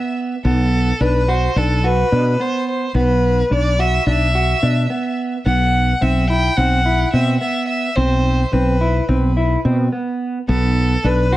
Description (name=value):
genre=progressive instrumental, band music in an uneven meter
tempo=215 BPM (eighths)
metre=9/8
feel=straight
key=B phrygian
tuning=A4 = 440 Hz
part: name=clear violin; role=melody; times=0.0-11.4 s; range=A4 to G5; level=-20 LUFS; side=equal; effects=digital delay
part: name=mellow electric guitar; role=arpeggios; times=0.0-11.4 s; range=B3 to F#4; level=-21 LUFS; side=right 2 dB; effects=none
part: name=woody fretless electric bass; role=bass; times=0.4-11.4 s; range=B1 to B2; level=-17 LUFS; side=equal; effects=analog chorus
room=light reverb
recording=worn, warbling old tape, cassette tape, warbly pitch drift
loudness=-15 LUFS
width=side -16 dB against mid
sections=0.0-11.4 A section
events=none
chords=0.5 Bm; 5.5 Cmaj7#11/B; 10.5 Bm